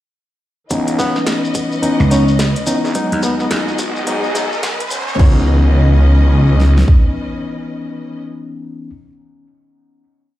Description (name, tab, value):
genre	glitch hop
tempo	107 BPM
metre	4/4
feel	swing 61% on 16ths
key	C# minor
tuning	A4 = 440 Hz
part	warm studio string section	sustained chords	0.7-8.2 s	E3 to D#5	-24 LUFS	left 1 dB	sidechain pumping, low-pass filter
part	tine electric piano	stabs	0.7-8.9 s	E3 to D#4	-20 LUFS	left 1 dB	sidechain pumping, low-pass filter, dub echo
part	phased detuned saw bass	bass	0.7-6.8 s	G#1 to E2	-13 LUFS	equal	phaser, high-pass filter
part	drum and bass drum kit	drums	0.7-5.3 s	crash cymbal, hi-hat, snare drum	-23 LUFS	equal	high-pass filter on hats, high-pass filter on snare, high-pass filter on cymbals, high-pass filter on room
part	pop drum kit	drums	0.7-7.0 s	kick drum, snare drum	-13 LUFS	equal	high-pass filter on kick, high-pass filter on snare
part	shekere	percussion	0.7-5.2 s	none	-29 LUFS	left 2 dB	none
part	riser	sound effects	2.0-5.2 s	none	-26 LUFS	equal	none
part	mellow tenor saxophone	melody	1.0-3.5 s	B3 to C#4	-22 LUFS	left 2 dB	dub echo
part	dry thumbed slap bass	bass	2.0-4.9 s	B1 to D#2	-16 LUFS	right 1 dB	none
room	light reverb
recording	played on a big sound system in a bare room, stone room reverb, high-pass filter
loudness	-12 LUFS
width	side -14 dB against mid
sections	0.7-5.2 build; 5.2-7.4 final chord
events	build-up 0.7-5.2; filter sweep on tine electric piano 0.7-5.2; filter sweep 0.7-5.2; riser 2.0-5.2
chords	0.7 C#m9; 3.0 B6; 5.2 C#m9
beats	| 0.71 1.27 1.83 2.39 | 2.95 3.51 4.07 4.63 | 5.19 5.75 6.31 6.88